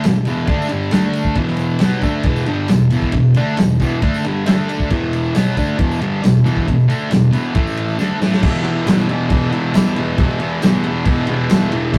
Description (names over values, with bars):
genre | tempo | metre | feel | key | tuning
garage rock duo or trio | 136 BPM | 4/4 | straight | unclear | A4 = 440 Hz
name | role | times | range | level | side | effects
thick fuzz guitar | riff | 0.0-12.0 s | E2 to D4 | -19 LUFS | equal | distortion
vintage drum kit | drums | 0.0-12.0 s | crash cymbal, kick drum, ride cymbal, snare drum | -20 LUFS | equal | none
tambourine | percussion | 0.1-11.6 s | none | -44 LUFS | equal | none
room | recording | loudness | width
wet booth ambience, RT60 0.2 s | rough rehearsal-room recording, tube saturation | -16 LUFS | mono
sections
0.0-8.4 A section; 8.4-12.0 B section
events
drum fill 8.0-8.4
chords
0.0 E5; 0.9 D5; 1.4 E5; 4.5 D5; 4.9 E5; 7.6 A5; 8.0 Asus4; 8.4 E5